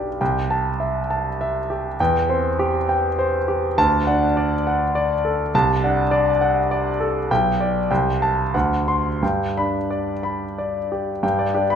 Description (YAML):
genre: classical, romantic character piece for solo piano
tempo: 86-104 BPM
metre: 3/4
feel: rubato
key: G major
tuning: A4 = 440 Hz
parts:
  - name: clear concert grand piano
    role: solo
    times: 0.0-11.8 s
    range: B1 to C6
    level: -18 LUFS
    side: equal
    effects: none
room: moderate recital hall reverb, RT60 1.5 s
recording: none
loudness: -18 LUFS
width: side -8 dB against mid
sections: 0.0-11.2 A section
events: none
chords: 0.2 C6; 2.0 C/E; 3.8 D; 5.5 D7/C; 7.3 G/B; 7.9 Am7/C; 8.5 D7; 9.2 G; 11.2 G5